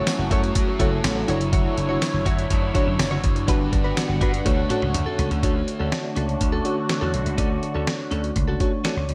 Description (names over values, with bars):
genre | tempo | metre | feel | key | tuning
1980s-style pop | 123 BPM | 4/4 | straight | unclear | A4 = 440 Hz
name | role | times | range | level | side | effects
mellow FM electric piano | accompaniment | 0.0-9.1 s | F#3 to D5 | -29 LUFS | equal | chorus
thick fuzz guitar | accompaniment | 0.0-5.9 s | D3 to G4 | -36 LUFS | equal | distortion, subtle chorus
phased analog pad | sustained chords | 0.0-9.1 s | C#3 to F#5 | -32 LUFS | equal | phaser, chorus
direct-recorded clean electric guitar | riff | 0.0-9.1 s | C#4 to C#5 | -33 LUFS | equal | subtle chorus, digital delay
dusty soul sampler-style drum kit | drums | 0.1-9.1 s | hi-hat, kick drum, snare drum, tambourine, toms | -26 LUFS | equal | none
vintage slap bass | bass | 0.2-9.1 s | F#1 to G2 | -29 LUFS | equal | none
room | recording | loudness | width
light reverb | none | -22 LUFS | mono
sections
0.0-5.4 A section; 5.4-9.1 B section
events
drum fill 4.5-5.4; FM electric piano fill 8.6-9.1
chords
0.0 F#m7; 1.3 Dmaj9/F#; 3.5 Gmaj7; 4.5 Dmaj7